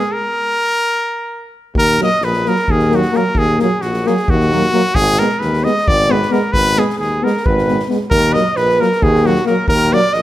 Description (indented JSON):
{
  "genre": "balkan folk, Balkan brass band",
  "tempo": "264 BPM (eighths)",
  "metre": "7/8",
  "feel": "straight",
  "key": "Eb harmonic minor",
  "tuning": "A4 = 440 Hz",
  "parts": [
    { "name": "clear trumpet", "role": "melody", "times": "0.0-10.2 s", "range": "Gb4 to Eb5", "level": "-16 LUFS", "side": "equal", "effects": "none" },
    { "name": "warm alto saxophone", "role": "second line", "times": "0.0-0.2, 7.2-10.2 s", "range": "Gb4 to Eb5", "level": "-19 LUFS", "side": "right 3 dB", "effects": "none" },
    { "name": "mellow trombone", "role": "accompaniment", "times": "0.0-10.0 s", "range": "Gb3 to Ab3", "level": "-21 LUFS", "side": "right 4 dB", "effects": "none" },
    { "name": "warm euphonium", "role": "accompaniment", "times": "0.0-10.0 s", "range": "Bb3 to Cb4", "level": "-22 LUFS", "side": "left 6 dB", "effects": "none" },
    { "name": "warm tuba", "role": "bass", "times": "1.7-10.2 s", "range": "Ab1 to Eb2", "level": "-18 LUFS", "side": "equal", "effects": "none" },
    { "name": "street-band drum kit", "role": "percussion", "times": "1.8-10.2 s", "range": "kick drum, snare drum", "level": "-22 LUFS", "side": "equal", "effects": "none" }
  ],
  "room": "moderate recital hall reverb, RT60 1.6 s",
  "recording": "none",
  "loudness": "-12 LUFS",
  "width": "side -14 dB against mid",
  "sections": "0.0-1.8 A section; 1.8-10.2 B section",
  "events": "stop 0.1-1.8",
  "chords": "0.1 N.C.; 1.8 Ebm; 4.9 Abm; 8.1 Ebm"
}